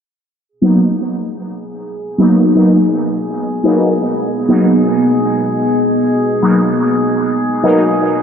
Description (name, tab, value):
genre	dub techno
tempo	124 BPM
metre	4/4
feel	straight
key	G# minor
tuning	A4 = 439 Hz
part	deep dark ambient pad	sustained chords	2.9-8.2 s	B3 to D#5	-17 LUFS	equal	chorus, built-in reverb
part	drifting glass-harmonics texture	texture	1.7-8.2 s	G#4	-21 LUFS	equal	chorus, built-in reverb
part	resonant sweep polysynth	stabs	0.6-7.8 s	F#3 to D#4	-13 LUFS	equal	chorus, phaser, vintage 12-bit sampler grit, dub echo
room	wet lush hall reverb, RT60 2.7 s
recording	dark, warm production, low-pass filter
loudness	-11 LUFS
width	side -7 dB against mid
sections	0.5-8.2 A section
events	filter sweep on ambient pad 0.5-8.2; filter sweep 0.5-8.2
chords	0.5 G#m7